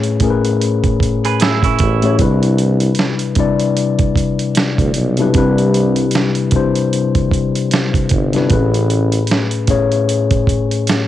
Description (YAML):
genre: R&B, neo-soul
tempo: 76 BPM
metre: 4/4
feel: swing 59% on 16ths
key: unclear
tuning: A4 = 440 Hz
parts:
  - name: mellow tine electric piano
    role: accompaniment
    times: 0.0-11.1 s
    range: A2 to D5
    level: -15 LUFS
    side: left 3 dB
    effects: cassette tape
  - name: dusty soul sampler-style drum kit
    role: drums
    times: 0.0-11.1 s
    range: hi-hat, kick drum, snare drum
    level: -17 LUFS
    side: right 2 dB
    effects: cassette tape
  - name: semi-hollow electric guitar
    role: second line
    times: 1.3-2.2 s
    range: C#4 to B4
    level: -19 LUFS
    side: right 10 dB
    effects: cassette tape
  - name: warm tuba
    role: bass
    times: 1.8-9.2 s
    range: G1 to D2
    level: -17 LUFS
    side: right 2 dB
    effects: transformer saturation
room: light reverb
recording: home recording on cassette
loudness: -13 LUFS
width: side -12 dB against mid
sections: 0.0-11.1 A section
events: none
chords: 0.0 Amaj9; 2.2 Cmaj9; 8.5 Amaj9